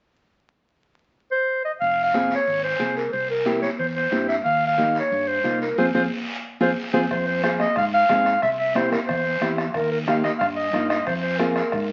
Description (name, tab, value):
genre	latin, cumbia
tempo	182 BPM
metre	4/4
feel	straight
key	F minor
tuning	A4 = 440 Hz
part	warm clarinet	melody	1.3-11.9 s	Bb4 to F5	-24 LUFS	equal	none
part	fingered electric bass	bass	1.8-11.9 s	F1 to Ab2	-34 LUFS	equal	none
part	guiro	percussion	1.8-11.9 s	none	-36 LUFS	equal	none
part	nylon-string guitar	accompaniment	2.1-11.6 s	Bb3 to Ab4	-29 LUFS	equal	none
part	congas	percussion	2.1-11.6 s	none	-32 LUFS	equal	none
part	bombo	percussion	7.1-11.9 s	none	-32 LUFS	equal	none
room	moderate studio reverb, RT60 0.7 s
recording	very old 78 rpm record, vinyl crackle, nothing above 7.8 kHz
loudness	-22 LUFS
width	mono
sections	0.5-1.8 A section; 1.8-7.1 B section; 7.1-11.9 C section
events	band accent 5.8-7.1; drum fill 6.6-7.1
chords	0.5 N.C.; 1.8 Fm; 3.1 C7; 4.5 Eb; 5.8 Fm; 8.4 C; 9.7 Eb; 11.1 Fm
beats	| 0.49 0.82 1.15 1.48 | 1.81 2.14 2.47 2.80 | 3.13 3.46 3.79 4.12 | 4.45 4.78 5.12 5.45 | 5.78 6.11 6.44 6.77 | 7.10 7.43 7.76 8.09 | 8.42 8.75 9.08 9.41 | 9.74 10.07 10.40 10.73 | 11.06 11.39 11.72